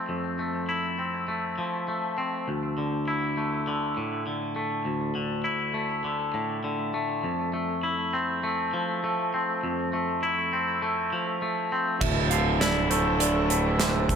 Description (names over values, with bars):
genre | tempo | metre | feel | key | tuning
post-rock | 101 BPM | 4/4 | straight | D minor | A4 = 440 Hz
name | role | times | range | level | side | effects
twangy electric guitar | arpeggios | 0.0-14.2 s | D2 to E4 | -26 LUFS | left 1 dB | analog delay
rich chamber string section | sustained chords | 12.0-14.2 s | F3 to A4 | -34 LUFS | right 1 dB | none
electric guitar through a small old amp | arpeggios | 12.0-14.2 s | C5 to F5 | -31 LUFS | right 4 dB | analog delay
fuzz fingered electric bass | bass | 12.0-14.2 s | D1 | -26 LUFS | right 1 dB | overdrive
big rock drum kit | drums | 12.0-14.2 s | crash cymbal, hi-hat, kick drum, snare drum | -27 LUFS | right 3 dB | none
room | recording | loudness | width
moderate concert hall reverb, RT60 2.3 s | none | -25 LUFS | side -7 dB against mid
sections
0.0-12.0 A section; 12.0-14.2 A section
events
none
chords
0.0 Fmaj7; 2.5 Dsus2; 7.2 Fmaj7; 12.0 Dmadd9